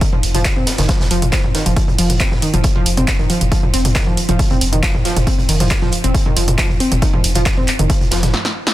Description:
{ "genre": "driving peak-time techno", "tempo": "137 BPM", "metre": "4/4", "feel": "straight", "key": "unclear", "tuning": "A4 = 440 Hz", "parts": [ { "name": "wide unison pluck", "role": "riff", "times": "0.0-8.2 s", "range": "Eb3 to C4", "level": "-20 LUFS", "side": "equal", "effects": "overdrive, cassette tape, sidechain pumping, digital delay" }, { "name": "electronic kick drum", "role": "drums", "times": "0.0-8.0 s", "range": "none", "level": "-18 LUFS", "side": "equal", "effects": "none" }, { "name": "punchy analog drum machine", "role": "drums", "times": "0.0-8.7 s", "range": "handclaps, hi-hat, snare drum, toms", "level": "-19 LUFS", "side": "right 1 dB", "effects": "sidechain pumping on hats, sidechain pumping on toms" }, { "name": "raw garage drum kit", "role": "drums", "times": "0.0-8.3 s", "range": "hi-hat, snare drum", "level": "-27 LUFS", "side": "right 1 dB", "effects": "sidechain pumping on hats, high-pass filter on hats, high-pass filter on snare, high-pass filter on room" }, { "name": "saturated sub bass", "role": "bass", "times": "0.1-8.3 s", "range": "F1", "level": "-19 LUFS", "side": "equal", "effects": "tube saturation, sidechain pumping, low-pass filter" } ], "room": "little or no reverb", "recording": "dense, heavily limited modern master", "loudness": "-13 LUFS", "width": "side -15 dB against mid", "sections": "0.0-8.7 A section", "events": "drum fill 8.3-8.7; stop 8.3-8.7", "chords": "0.0 F5" }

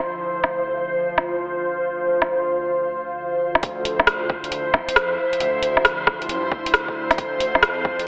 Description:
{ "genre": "future garage", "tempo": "135 BPM", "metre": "4/4", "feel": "swing 66% on 16ths", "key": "D minor", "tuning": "A4 = 439 Hz", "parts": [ { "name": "ethereal airy pad", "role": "sustained chords", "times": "0.0-8.1 s", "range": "F3 to C5", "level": "-25 LUFS", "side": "equal", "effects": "ensemble chorus, built-in reverb, phaser, sidechain pumping" }, { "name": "dark detuned saw bass", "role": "bass", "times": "0.0-8.1 s", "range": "D2 to G2", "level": "-36 LUFS", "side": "equal", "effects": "sidechain pumping" }, { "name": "deep house drum kit", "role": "drums", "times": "0.4-8.1 s", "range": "hi-hat, rim click", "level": "-22 LUFS", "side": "equal", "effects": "none" }, { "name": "electronic kick drum", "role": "drums", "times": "3.6-8.0 s", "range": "none", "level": "-29 LUFS", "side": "equal", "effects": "none" } ], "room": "wet lush hall reverb, RT60 1.9 s, digital ambience", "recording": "heavily compressed radio sound, multiband compression, telephone sound", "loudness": "-22 LUFS", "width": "mono", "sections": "0.0-3.6 A section; 3.6-8.1 B section", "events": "filter sweep on ambient pad 0.0-3.6", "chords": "0.0 Dm7; 3.6 Dm9" }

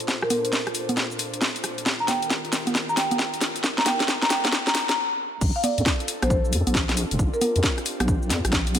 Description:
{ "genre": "UK garage, two-step garage", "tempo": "135 BPM", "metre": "4/4", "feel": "swing 64% on 16ths", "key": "Bb major", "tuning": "A4 = 439 Hz", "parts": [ { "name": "airy breathy pad", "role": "sustained chords", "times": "0.0-8.8 s", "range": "Ab2 to C5", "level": "-34 LUFS", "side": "equal", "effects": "chorus, sidechain pumping" }, { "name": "house drum kit", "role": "drums", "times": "0.0-8.8 s", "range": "cabasa, congas, crash cymbal, hi-hat, rim click, snare drum", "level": "-24 LUFS", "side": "equal", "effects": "overdrive" }, { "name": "electronic kick drum", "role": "drums", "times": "0.1-8.6 s", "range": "none", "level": "-26 LUFS", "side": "equal", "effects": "overdrive, high-pass filter on kick" }, { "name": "marimba with medium mallets", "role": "melody", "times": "0.2-7.5 s", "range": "Bb4 to Bb5", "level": "-27 LUFS", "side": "equal", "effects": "ping-pong delay" }, { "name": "deep soft wobble bass", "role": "bass", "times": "5.4-8.8 s", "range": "F1 to F2", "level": "-24 LUFS", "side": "equal", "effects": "chorus" } ], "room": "light reverb, digital ambience", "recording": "high-pass filter", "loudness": "-21 LUFS", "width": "side -9 dB against mid", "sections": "0.0-5.4 A section; 5.4-8.8 B section", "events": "build-up 0.0-5.4; drum fill 0.0-5.0; stop 5.0-5.4; drop 5.4-8.8", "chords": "0.0 Bbmaj9; 1.9 Ebmaj9; 3.4 Abmaj9; 5.4 Bbmaj9" }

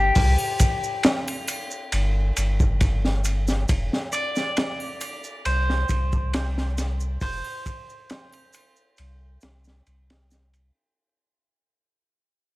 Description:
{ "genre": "trip hop", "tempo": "68 BPM", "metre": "4/4", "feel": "straight", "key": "unclear", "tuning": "A4 = 440 Hz", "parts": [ { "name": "electric guitar at the edge of break-up", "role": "melody", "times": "0.0-9.8 s", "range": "G4 to D5", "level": "-28 LUFS", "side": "left 2 dB", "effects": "tape echo" }, { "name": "warm sub bass", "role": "bass", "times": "0.0-10.7 s", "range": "F1 to C2", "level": "-23 LUFS", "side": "equal", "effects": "none" }, { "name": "crunchy breakbeat drum kit", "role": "drums", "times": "0.2-10.7 s", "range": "hi-hat, kick drum, ride cymbal, snare drum", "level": "-24 LUFS", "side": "equal", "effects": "none" }, { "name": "maracas and triangle", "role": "percussion", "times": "0.2-10.7 s", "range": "none", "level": "-35 LUFS", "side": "right 2 dB", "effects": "none" } ], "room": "studio ambience", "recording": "vinyl crackle", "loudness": "-22 LUFS", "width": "side -19 dB against mid", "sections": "0.0-10.7 A section", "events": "fade-out 1.3-10.7", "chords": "none" }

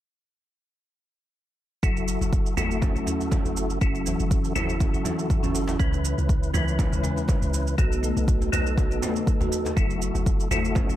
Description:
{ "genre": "afro house", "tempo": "121 BPM", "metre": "4/4", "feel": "swing 55% on 16ths", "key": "F# dorian", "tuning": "A4 = 440 Hz", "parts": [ { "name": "marimba with soft mallets", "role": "arpeggios", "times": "1.8-11.0 s", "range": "C#3 to A4", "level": "-29 LUFS", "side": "left 1 dB", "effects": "sidechain pumping, ping-pong delay" }, { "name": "percussive tonewheel organ", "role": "stabs", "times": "1.8-11.0 s", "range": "B3 to B4", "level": "-30 LUFS", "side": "left 1 dB", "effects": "chorus vibrato, fast rotary speaker, sidechain pumping, ping-pong delay" }, { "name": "warm 808-style bass", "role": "bass", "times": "1.8-11.0 s", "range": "F#1 to C#2", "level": "-28 LUFS", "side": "equal", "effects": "sidechain pumping" }, { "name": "electronic kick drum", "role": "drums", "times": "1.8-10.9 s", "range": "none", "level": "-24 LUFS", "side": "equal", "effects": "none" }, { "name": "shaker", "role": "drums", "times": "1.8-11.0 s", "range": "none", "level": "-36 LUFS", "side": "right 7 dB", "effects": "overdrive" }, { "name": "djembe", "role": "percussion", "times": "2.0-10.9 s", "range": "none", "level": "-36 LUFS", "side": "equal", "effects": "none" }, { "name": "congas", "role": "percussion", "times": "2.6-10.9 s", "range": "none", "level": "-35 LUFS", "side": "right 4 dB", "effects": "none" } ], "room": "small room ambience", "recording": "dark, warm production", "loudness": "-22 LUFS", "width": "side -13 dB against mid", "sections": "1.8-11.0 A section", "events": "none", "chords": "1.8 F#m7; 5.8 C#m7; 7.8 B7; 9.8 F#m7" }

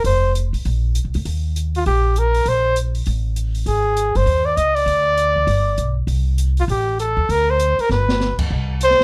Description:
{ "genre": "jazz, small-group swing and bop", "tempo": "199 BPM", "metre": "4/4", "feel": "swing 62% on 8ths", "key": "unclear", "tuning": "A4 = 440 Hz", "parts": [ { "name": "mellow trumpet", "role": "melody", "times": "0.0-9.0 s", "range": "F4 to Eb5", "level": "-20 LUFS", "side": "equal", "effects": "none" }, { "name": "upright bass", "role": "bass", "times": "0.0-9.0 s", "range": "F1 to Eb2", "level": "-22 LUFS", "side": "equal", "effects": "none" }, { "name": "open jazz drum kit", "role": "drums", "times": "0.0-9.0 s", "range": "crash cymbal, hi-hat, kick drum, snare drum", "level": "-31 LUFS", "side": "equal", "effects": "none" } ], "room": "light reverb", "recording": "none", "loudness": "-19 LUFS", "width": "mono", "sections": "0.0-8.5 A section", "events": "drum fill 7.9-8.2", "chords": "0.0 F5; 0.6 Bbadd9; 1.3 Eb; 2.5 Bbsus2; 3.1 N.C.; 3.7 Ab; 4.9 N.C.; 5.5 G; 6.1 N.C.; 6.7 Gsus2/A; 7.3 Bbadd9/D; 7.9 G; 8.5 C5" }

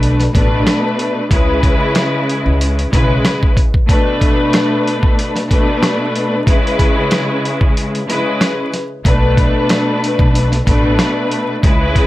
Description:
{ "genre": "hip hop, boom-bap hip-hop", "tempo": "93 BPM", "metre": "4/4", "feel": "swing 55% on 16ths", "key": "B dorian", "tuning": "A4 = 441 Hz", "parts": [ { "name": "rich studio string section", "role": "accompaniment", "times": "0.0-12.1 s", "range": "B2 to B4", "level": "-15 LUFS", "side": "left 1 dB", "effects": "high-pass filter, low-pass filter" }, { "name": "upright bass", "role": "bass", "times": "0.0-3.2, 9.1-12.1 s", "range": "A1 to C#2", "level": "-16 LUFS", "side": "equal", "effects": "none" }, { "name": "dusty soul sampler-style drum kit", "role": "drums", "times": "0.0-12.1 s", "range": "hi-hat, kick drum, rim click, snare drum", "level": "-15 LUFS", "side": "equal", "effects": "none" } ], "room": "light reverb", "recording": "vinyl crackle", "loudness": "-12 LUFS", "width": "side -16 dB against mid", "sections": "0.0-12.1 A section", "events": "break 7.8-9.1", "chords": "0.0 Bm7; 1.3 C#m7; 3.9 Bm7; 6.5 C#m7; 9.1 Bm7" }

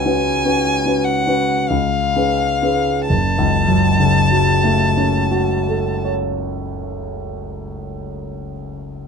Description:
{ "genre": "classical, romantic duo for violin and grand piano", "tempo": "41-51 BPM", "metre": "3/4", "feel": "rubato", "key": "F# minor", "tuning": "A4 = 442 Hz", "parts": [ { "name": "rich violin", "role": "melody", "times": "0.0-6.1 s", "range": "E#5 to A5", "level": "-19 LUFS", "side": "left 2 dB", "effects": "none" }, { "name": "warm grand piano", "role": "accompaniment", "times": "0.0-9.1 s", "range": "F#1 to C#5", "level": "-17 LUFS", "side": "left 1 dB", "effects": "none" } ], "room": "light reverb", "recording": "dark, warm production", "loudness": "-15 LUFS", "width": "side -6 dB against mid", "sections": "0.0-3.1 A section; 3.1-7.0 B section", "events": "slowing down 0.0-3.1", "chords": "0.0 C#7sus4; 1.7 C#7; 3.1 F#m" }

